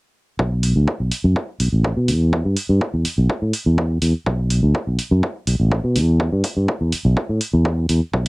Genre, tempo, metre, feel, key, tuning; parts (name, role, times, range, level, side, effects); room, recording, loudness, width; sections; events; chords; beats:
filtered disco house; 124 BPM; 4/4; straight; A4 = 439 Hz
modern bright fingered electric bass; bass; 0.4-8.3 s; A1 to B2; -16 LUFS; equal; sidechain pumping, low-pass filter
electronic kick drum; drums; 0.4-8.2 s; -23 LUFS; equal; high-pass filter on kick, cassette tape, high-pass filter on room
electronic hi-hat; drums; 0.6-8.3 s; -26 LUFS; right 1 dB; sidechain pumping on hats, cassette tape
little or no reverb; home recording on cassette; -17 LUFS; side -26 dB against mid
0.4-8.3 A section
filter sweep on fingered electric bass 0.4-8.3
| 0.39 0.88 1.36 1.84 | 2.33 2.81 3.30 3.78 | 4.26 4.75 5.23 5.71 | 6.20 6.68 7.17 7.65 | 8.13